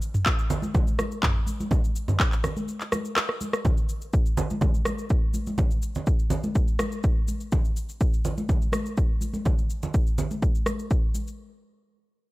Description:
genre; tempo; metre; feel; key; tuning
house; 124 BPM; 4/4; straight; none; none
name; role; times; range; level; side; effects
house drum kit; drums; 0.0-11.4 s; handclaps, rim click, shaker, toms; -28 LUFS; equal; none
electronic kick drum; drums; 0.3-11.0 s; none; -24 LUFS; equal; none
congas; percussion; 0.5-11.2 s; none; -31 LUFS; right 1 dB; none
room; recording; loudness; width
little or no reverb; none; -23 LUFS; side -19 dB against mid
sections
0.0-3.6 A section; 3.6-11.4 B section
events
drop 0.0-3.6; break 2.7-3.6; drum fill 3.2-3.6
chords
none

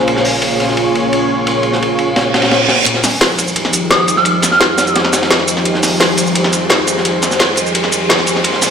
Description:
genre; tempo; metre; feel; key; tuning
liquid drum and bass; 172 BPM; 4/4; straight; F minor; A4 = 440 Hz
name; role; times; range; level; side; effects
lush unison pad; sustained chords; 0.0-8.7 s; Bb2 to Db5; -16 LUFS; equal; chorus, phaser
crunchy breakbeat drum kit; drums; 0.1-8.7 s; hi-hat, ride cymbal, snare drum; -17 LUFS; equal; high-pass filter on cymbals, high-pass filter on hats, high-pass filter on snare, high-pass filter on room
reverse cymbal and riser; sound effects; 2.3-8.7 s; none; -21 LUFS; right 2 dB; none
drum and bass drum kit; drums; 2.9-8.7 s; hi-hat, shaker, snare drum; -14 LUFS; equal; high-pass filter on hats, high-pass filter on snare, high-pass filter on perc, high-pass filter on room
soft synth bell; melody; 3.9-5.0 s; Eb6 to F6; -16 LUFS; right 1 dB; chorus, tape echo
room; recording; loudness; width
wet lush hall reverb, RT60 1.9 s, studio ambience; played on a big sound system in a bare room, large studio reverb; -11 LUFS; side -7 dB against mid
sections
0.0-2.9 A section; 2.9-8.7 B section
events
reverse cymbal 2.3-2.9; build-up 2.9-8.7; riser 2.9-8.7; filter sweep on analog synth pad 2.9-8.7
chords
0.0 Bbm7; 2.9 Fm9

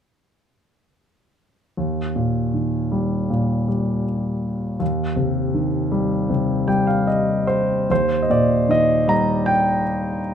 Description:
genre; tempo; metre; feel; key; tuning
classical, lyrical solo piano; 74-82 BPM; 4/4; rubato; Eb major; A4 = 440 Hz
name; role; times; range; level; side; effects
warm concert grand piano; solo; 1.8-10.3 s; Eb2 to Bb5; -18 LUFS; equal; none
room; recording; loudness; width
moderate studio ambience, RT60 0.5 s; none; -18 LUFS; side -8 dB against mid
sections
1.8-7.9 A section; 7.9-10.3 B section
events
grand piano fill 6.3-7.9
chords
1.8 Eb; 4.8 Cm/Eb; 7.9 Eb

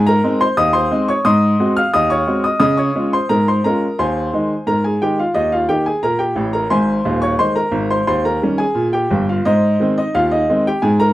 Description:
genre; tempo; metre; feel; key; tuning
ragtime piano; 88 BPM; 2/4; straight; Ab major; A4 = 440 Hz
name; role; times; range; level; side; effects
clear baby grand piano; solo; 0.0-11.1 s; Eb1 to F6; -14 LUFS; equal; none
room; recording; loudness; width
light reverb; dry, close 1970s-style studio recording; -14 LUFS; side -15 dB against mid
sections
0.0-11.1 A section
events
none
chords
0.0 Eb7(no3); 1.3 Ab7; 2.6 Db; 4.0 Ab/Eb; 5.4 Eb; 6.7 Ab; 8.1 Eb7; 9.4 Ab

